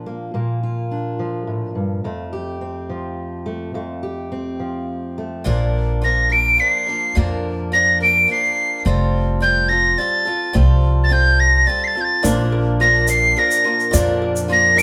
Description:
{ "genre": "indie folk with a building arrangement", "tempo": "106 BPM", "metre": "3/4", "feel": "straight", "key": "unclear", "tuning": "A4 = 440 Hz", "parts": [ { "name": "fingerpicked steel-string acoustic guitar", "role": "accompaniment", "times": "0.0-5.5 s", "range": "F2 to G4", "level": "-26 LUFS", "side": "equal", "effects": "none" }, { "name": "picked swing-style acoustic guitar", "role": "accompaniment", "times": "5.4-14.8 s", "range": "Bb2 to Bb4", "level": "-27 LUFS", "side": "equal", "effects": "none" }, { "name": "upright bass", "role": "bass", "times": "5.5-14.8 s", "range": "F1 to F2", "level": "-20 LUFS", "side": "equal", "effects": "none" }, { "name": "tin whistle", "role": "melody", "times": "6.0-14.8 s", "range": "G6 to D7", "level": "-17 LUFS", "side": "equal", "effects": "none" }, { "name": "warm upright piano", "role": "accompaniment", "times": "12.2-14.8 s", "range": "Bb1 to Bb4", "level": "-28 LUFS", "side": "equal", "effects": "none" }, { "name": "ukulele", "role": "arpeggios", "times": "12.2-14.8 s", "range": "F4 to D5", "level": "-29 LUFS", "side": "equal", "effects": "none" }, { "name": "tube shaker", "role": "percussion", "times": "12.2-14.8 s", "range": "none", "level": "-29 LUFS", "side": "equal", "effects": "none" } ], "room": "moderate large studio reverb, RT60 0.9 s", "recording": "band playing live in one room", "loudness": "-18 LUFS", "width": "mono", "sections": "0.0-5.5 A section; 5.5-14.8 B section", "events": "build-up 5.5-14.8", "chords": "0.0 Bb; 2.0 Fadd9; 5.5 Bb; 8.9 Fadd9; 12.2 Bb", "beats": "| 0.34 0.91 1.48 | 2.05 2.62 3.18 | 3.75 4.32 4.89 | 5.46 6.02 6.59 | 7.16 7.72 8.29 | 8.85 9.42 9.98 | 10.55 11.11 11.68 | 12.24 12.81 13.37 | 13.94 14.50" }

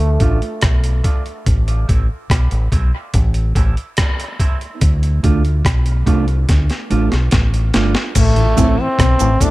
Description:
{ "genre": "dub reggae", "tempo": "72 BPM", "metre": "4/4", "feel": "straight", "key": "A minor", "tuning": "A4 = 440 Hz", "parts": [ { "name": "clear trombone", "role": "melody", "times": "0.0-1.1, 8.2-9.5 s", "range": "A3 to D4", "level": "-21 LUFS", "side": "equal", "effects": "low-pass filter, dub echo" }, { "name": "deep dub fingered electric bass", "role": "bass", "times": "0.0-9.5 s", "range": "G1 to D2", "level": "-16 LUFS", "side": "equal", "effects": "none" }, { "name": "mellow electric guitar", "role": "accompaniment", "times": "0.2-8.8 s", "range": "A3 to F4", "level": "-24 LUFS", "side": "right 4 dB", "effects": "high-pass filter, low-pass filter, dub echo" }, { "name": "breakbeat sampler-style drum kit", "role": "drums", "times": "0.2-9.5 s", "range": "crash cymbal, hi-hat, kick drum, rim click, snare drum", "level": "-16 LUFS", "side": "equal", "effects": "none" }, { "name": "electric guitar with an envelope filter", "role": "riff", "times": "8.2-9.5 s", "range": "A2 to B2", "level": "-20 LUFS", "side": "left 5 dB", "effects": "wide subtle chorus" }, { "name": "cabasa", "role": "percussion", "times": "8.2-9.5 s", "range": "none", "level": "-27 LUFS", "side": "right 10 dB", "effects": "none" }, { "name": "mellow tonewheel organ", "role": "accompaniment", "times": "8.4-9.5 s", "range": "A2 to E4", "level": "-23 LUFS", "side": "left 1 dB", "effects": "slow rotary speaker" } ], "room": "digital ambience", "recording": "none", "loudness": "-13 LUFS", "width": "side -18 dB against mid", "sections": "0.0-8.2 A section; 8.2-9.5 B section", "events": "filter sweep on clean electric guitar 0.0-4.8; drum fill 6.5-8.2", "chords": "0.0 Dm; 1.5 Am; 4.8 Dm; 8.2 Am", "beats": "0.62 | 1.46 2.30 3.14 3.98 | 4.81 5.65 6.49 7.32 | 8.16 9.00" }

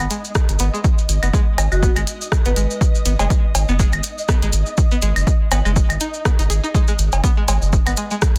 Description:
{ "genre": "minimal techno", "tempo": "122 BPM", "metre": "4/4", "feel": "swing 56% on 16ths", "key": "G# minor", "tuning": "A4 = 439 Hz", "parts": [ { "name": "string-like resonator pluck", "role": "riff", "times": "0.0-8.2 s", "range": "G#3 to G#4", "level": "-29 LUFS", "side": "equal", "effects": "chorus, phaser, sidechain pumping, dub echo" }, { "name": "round analog bass", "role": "bass", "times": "0.0-8.4 s", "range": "F#1 to G#1", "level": "-21 LUFS", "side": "equal", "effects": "sidechain pumping" }, { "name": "minimal click drum kit", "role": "drums", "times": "0.0-8.4 s", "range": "hi-hat, rim click", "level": "-27 LUFS", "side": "equal", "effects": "overdrive, soft clipping on snare" }, { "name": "claves and cowbell", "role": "percussion", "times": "0.0-8.0 s", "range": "none", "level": "-26 LUFS", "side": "equal", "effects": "delay" }, { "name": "flickering grainy texture", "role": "texture", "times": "0.2-8.4 s", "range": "D#5", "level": "-35 LUFS", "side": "equal", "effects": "built-in reverb, sidechain pumping" }, { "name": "maracas", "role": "percussion", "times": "0.1-8.4 s", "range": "none", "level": "-31 LUFS", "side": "equal", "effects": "none" }, { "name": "electronic kick drum", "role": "drums", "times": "0.4-8.3 s", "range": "none", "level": "-19 LUFS", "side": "equal", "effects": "overdrive" }, { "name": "vibraphone with medium hard mallets", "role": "melody", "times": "1.7-2.7 s", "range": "F#4 to B4", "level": "-30 LUFS", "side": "equal", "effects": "delay" } ], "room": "little or no reverb", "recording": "dense, heavily limited modern master", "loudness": "-18 LUFS", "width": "mono", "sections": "0.0-8.4 A section", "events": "none", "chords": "0.0 G#5", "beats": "0.35 | 0.84 1.33 1.83 2.32 | 2.81 3.30 3.79 4.29 | 4.78 5.27 5.76 6.25 | 6.75 7.24 7.73 8.22" }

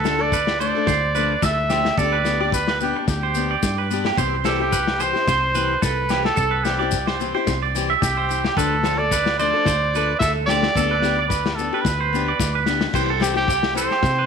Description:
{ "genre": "highlife guitar band", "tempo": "110 BPM", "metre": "4/4", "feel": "swing 54% on 16ths", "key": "C major", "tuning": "A4 = 440 Hz", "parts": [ { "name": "clear trumpet", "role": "melody", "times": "0.0-14.3 s", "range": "G4 to E5", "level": "-22 LUFS", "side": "right 1 dB", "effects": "none" }, { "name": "picked steel-string acoustic guitar", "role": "accompaniment", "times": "0.0-13.9 s", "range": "E3 to A4", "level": "-27 LUFS", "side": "left 11 dB", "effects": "none" }, { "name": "clean electric guitar", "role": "arpeggios", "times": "0.0-14.3 s", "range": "G4 to E5", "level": "-24 LUFS", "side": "right 11 dB", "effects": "spring reverb, slapback echo" }, { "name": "fingered electric bass", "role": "bass", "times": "0.0-14.3 s", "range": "C2 to C3", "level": "-26 LUFS", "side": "equal", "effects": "none" }, { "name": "crunchy breakbeat drum kit", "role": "drums", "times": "0.1-14.2 s", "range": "crash cymbal, kick drum, snare drum", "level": "-26 LUFS", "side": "left 4 dB", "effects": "none" }, { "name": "maracas", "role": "percussion", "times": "0.1-14.2 s", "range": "none", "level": "-33 LUFS", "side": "left 15 dB", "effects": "none" } ], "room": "moderate echo chamber reverb, RT60 1.6 s, small room ambience", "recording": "1960s-style stereo with parts hard left and right", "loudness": "-18 LUFS", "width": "side -6 dB against mid", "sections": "0.0-12.9 A section; 12.9-14.3 B section", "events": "none", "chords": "0.0 Dm; 2.0 G/D; 4.2 C; 8.6 Dm; 10.8 G/D; 12.9 C", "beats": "0.32 0.87 1.43 | 1.98 2.53 3.08 3.63 | 4.18 4.73 5.28 5.83 | 6.38 6.93 7.48 8.02 | 8.57 9.12 9.66 10.21 | 10.76 11.30 11.85 12.39 | 12.94 13.48 14.03" }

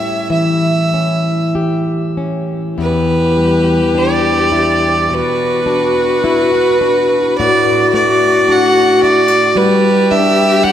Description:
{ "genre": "celtic folk, Celtic slow air", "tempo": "48-56 BPM", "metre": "4/4", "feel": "rubato", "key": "E dorian", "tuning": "A4 = 440 Hz", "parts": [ { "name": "bright fiddle", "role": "melody", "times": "0.0-10.7 s", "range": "B4 to F#5", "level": "-14 LUFS", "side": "right 2 dB", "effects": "none" }, { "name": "flamenco guitar", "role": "accompaniment", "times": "0.0-10.7 s", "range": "E2 to G4", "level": "-16 LUFS", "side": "left 2 dB", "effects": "none" }, { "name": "warm viola", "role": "second line", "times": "2.8-10.7 s", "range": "F#4 to G4", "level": "-16 LUFS", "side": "left 2 dB", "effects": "none" } ], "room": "wet cathedral reverb, RT60 5.2 s", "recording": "recorded in a church or concert hall", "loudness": "-11 LUFS", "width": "side -10 dB against mid", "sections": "0.0-2.8 A section; 2.8-10.7 A section", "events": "none", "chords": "0.0 A7; 2.8 Em7; 5.1 Bm; 7.4 D/A; 9.6 G5", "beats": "0.30 1.55 | 2.76 3.93 5.08 6.23 | 7.37 8.47 9.56 10.65" }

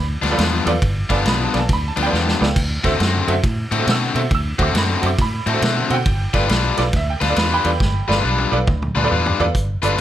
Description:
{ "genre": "electric blues shuffle", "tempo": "137 BPM", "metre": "4/4", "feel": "swing 64% on 8ths", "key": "G mixolydian", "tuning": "A4 = 442 Hz", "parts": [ { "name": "bright upright piano", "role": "accompaniment", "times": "0.0-9.9 s", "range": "F4 to E6", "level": "-23 LUFS", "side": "right 4 dB", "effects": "none" }, { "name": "vintage muted fingered electric bass", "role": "bass", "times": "0.0-10.0 s", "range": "G1 to B2", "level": "-21 LUFS", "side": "equal", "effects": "none" }, { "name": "overdriven semi-hollow guitar", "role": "riff", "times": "0.2-10.0 s", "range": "G2 to B4", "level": "-21 LUFS", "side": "left 5 dB", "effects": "none" }, { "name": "vintage drum kit", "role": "drums", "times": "0.2-10.0 s", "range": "crash cymbal, hi-hat, kick drum, ride cymbal, snare drum, toms", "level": "-22 LUFS", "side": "equal", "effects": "none" } ], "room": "light reverb", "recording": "none", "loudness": "-16 LUFS", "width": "side -12 dB against mid", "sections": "0.0-9.6 A section", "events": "drum fill 2.1-2.6, 7.8-9.6", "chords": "0.0 G7; 2.6 D7; 6.1 G7", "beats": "0.39 | 0.82 1.26 1.69 2.13 | 2.56 3.00 3.44 3.87 | 4.31 4.75 5.18 5.62 | 6.06 6.50 6.93 7.37 | 7.81 8.24 8.68 9.12 | 9.55 9.99" }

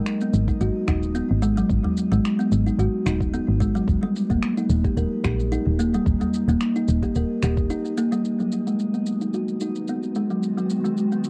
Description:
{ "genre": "organic downtempo", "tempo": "110 BPM", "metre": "4/4", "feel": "swing 54% on 16ths", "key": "G# minor", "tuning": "A4 = 440 Hz", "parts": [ { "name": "kalimba", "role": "arpeggios", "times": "0.0-11.3 s", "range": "F#3 to A#4", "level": "-25 LUFS", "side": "equal", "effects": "low-pass filter, analog delay, shimmer reverb" }, { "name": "electronic finger snaps and shaker", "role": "drums", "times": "0.1-11.3 s", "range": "none", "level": "-39 LUFS", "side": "equal", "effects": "overdrive, cassette tape" }, { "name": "woody FM bass", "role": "bass", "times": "0.3-7.7 s", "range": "D#1 to A#1", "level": "-25 LUFS", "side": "equal", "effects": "none" }, { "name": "electronic kick drum", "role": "drums", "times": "0.5-7.7 s", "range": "none", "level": "-29 LUFS", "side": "equal", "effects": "overdrive, cassette tape" }, { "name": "udu", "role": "percussion", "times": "1.8-7.5 s", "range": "none", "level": "-35 LUFS", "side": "equal", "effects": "none" }, { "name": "granular cloud pad", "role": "sustained chords", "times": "9.5-11.3 s", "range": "D#3 to F#4", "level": "-34 LUFS", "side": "equal", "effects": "built-in reverb, sidechain pumping, shimmer reverb" } ], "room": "wet booth ambience, RT60 0.2 s", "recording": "home recording on cassette", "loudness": "-23 LUFS", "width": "mono", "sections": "0.0-8.2 A section; 8.2-11.3 B section", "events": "none", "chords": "0.0 G#m7; 3.9 D#; 8.2 G#m7", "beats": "0.06 0.61 1.16 | 1.70 2.25 2.79 3.34 | 3.88 4.43 4.97 5.52 | 6.06 6.61 7.16 7.70 | 8.24 8.79 9.34 9.88 | 10.43 10.97" }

